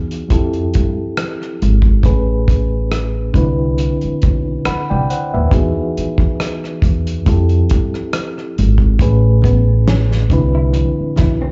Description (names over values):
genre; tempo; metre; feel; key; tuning
R&B, neo-soul; 69 BPM; 4/4; swing 55% on 16ths; unclear; A4 = 440 Hz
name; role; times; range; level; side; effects
mellow reed electric piano; accompaniment; 0.0-11.5 s; A2 to B5; -22 LUFS; equal; fast tremolo, slapback echo
upright bass; bass; 0.0-11.5 s; G#1 to E3; -18 LUFS; equal; none
warm soul drum kit; drums; 0.1-11.4 s; hi-hat, kick drum, rim click, snare drum; -19 LUFS; equal; none
congas; percussion; 9.0-11.5 s; none; -28 LUFS; equal; none
electric guitar through a small old amp; second line; 9.4-11.5 s; B3 to E4; -27 LUFS; equal; slapback echo
room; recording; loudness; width
small room reverb; live gig heard through the venue's PA, club ambience, nothing above 7.8 kHz; -15 LUFS; mono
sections
0.0-11.5 A section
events
none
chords
0.3 Fmaj9; 2.0 Amaj9; 3.3 Cmaj9; 5.5 Emaj9; 7.3 Fmaj9; 9.0 Amaj9; 10.3 Cmaj9